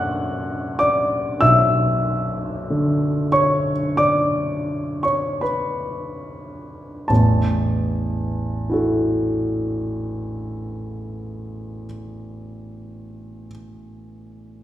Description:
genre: classical, impressionist solo piano.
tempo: 34-53 BPM.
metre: 4/4.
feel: rubato.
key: A major.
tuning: A4 = 439 Hz.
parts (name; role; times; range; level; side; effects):
warm grand piano; solo; 0.0-14.6 s; A1 to F#6; -20 LUFS; equal; none.
room: wet recital hall reverb, RT60 1.5 s.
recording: heard from further back in the room.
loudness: -18 LUFS.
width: side -13 dB against mid.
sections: 0.0-7.1 A section; 7.1-13.4 B section.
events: slowing down 0.0-7.1.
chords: 0.0 Bm11; 7.1 A5.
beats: 0.20 | 1.43 2.70 3.98 5.43 | 7.09 8.69 10.30 11.88.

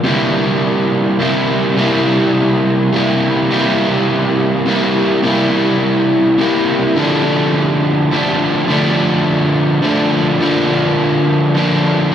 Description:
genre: rock.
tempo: 104 BPM.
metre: 3/4.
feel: straight.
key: unclear.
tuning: A4 = 439 Hz.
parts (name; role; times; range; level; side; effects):
overdriven semi-hollow guitar; solo; 0.0-12.1 s; C3 to E4; -12 LUFS; equal; diffuse ambient delay.
room: wet huge ambient reverb, RT60 8.9 s.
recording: dreamy mix soaked in reverb.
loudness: -12 LUFS.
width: side -9 dB against mid.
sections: 0.1-12.1 A section.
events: none.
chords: 0.1 C7; 7.0 Dm; 10.4 Bb/D.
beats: | 0.05 0.63 1.21 | 1.78 2.36 2.93 | 3.51 4.09 4.66 | 5.24 5.81 6.39 | 6.96 7.54 8.12 | 8.69 9.27 9.84 | 10.41 10.99 11.56 | 12.14.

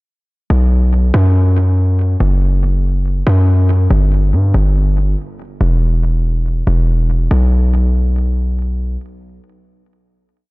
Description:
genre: hip hop, trap.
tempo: 141 BPM.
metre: 4/4.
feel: half-time.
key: unclear.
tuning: A4 = 440 Hz.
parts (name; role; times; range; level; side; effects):
hard-hitting 808-style bass; solo; 0.5-9.0 s; E1 to G2; -12 LUFS; equal; digital delay.
room: little or no reverb.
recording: none.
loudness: -12 LUFS.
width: side -22 dB against mid.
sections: 0.5-7.3 breakdown; 7.3-10.5 final note.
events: none.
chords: none.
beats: | 0.50 0.93 1.35 1.78 | 2.20 2.63 3.05 3.48 | 3.90 4.33 4.76 5.18 | 5.61 6.03 6.46 6.88 | 7.31 7.74 8.16 8.59.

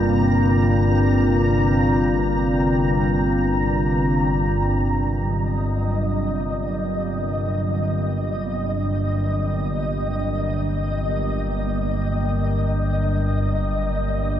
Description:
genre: dark ambient drone.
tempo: free time.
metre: none.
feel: none.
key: unclear.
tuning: A4 = 440 Hz.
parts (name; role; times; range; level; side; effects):
deep dark ambient pad; sustained chords; 0.0-14.4 s; Bb3 to Bb5; -31 LUFS; right 2 dB; chorus, built-in reverb.
quartz singing bowl; arpeggios; 0.0-11.0 s; C3 to F4; -25 LUFS; equal; diffuse ambient delay.
organ-like drone; drone; 0.0-14.4 s; G1 to G2; -21 LUFS; equal; ensemble chorus, built-in reverb.
flickering grainy texture; texture; 0.0-14.4 s; Eb5 to Bb5; -28 LUFS; left 1 dB; built-in reverb.
room: wet cathedral reverb, RT60 5.6 s.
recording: in a vast, echoing space.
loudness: -19 LUFS.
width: side -10 dB against mid.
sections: 0.0-5.2 A section; 5.2-14.4 B section.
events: fade-out on ambient pad 0.0-5.2.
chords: 0.0 N.C.; 5.2 Ebm.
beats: free time.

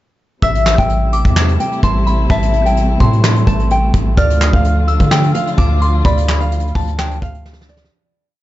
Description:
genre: hip hop, trap.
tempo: 128 BPM.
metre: 4/4.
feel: half-time.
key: A minor.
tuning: A4 = 440 Hz.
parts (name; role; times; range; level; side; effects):
nylon-string guitar; melody; 0.4-7.9 s; D5 to A5; -20 LUFS; left 1 dB; none.
soft synth bell; second line; 0.4-7.4 s; A5 to F6; -23 LUFS; equal; chorus, tape echo.
dark chamber string section; sustained chords; 0.4-7.9 s; C3 to F4; -22 LUFS; equal; none.
long sustained 808-style bass; bass; 0.4-7.9 s; A1 to D3; -15 LUFS; equal; none.
soft brush drum kit; drums; 0.4-8.0 s; handclaps, hi-hat, kick drum, snare drum; -16 LUFS; equal; none.
room: little or no reverb.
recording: dark, warm production, nothing above 7.7 kHz.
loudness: -12 LUFS.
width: side -15 dB against mid.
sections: 0.4-7.9 hook.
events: fade-out 6.0-7.9; drum fill 7.5-7.9.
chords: 0.4 Am7; 4.2 Dm.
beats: | 0.42 0.89 1.36 1.83 | 2.30 2.77 3.24 3.71 | 4.17 4.64 5.11 5.58 | 6.05 6.52 6.99 7.46.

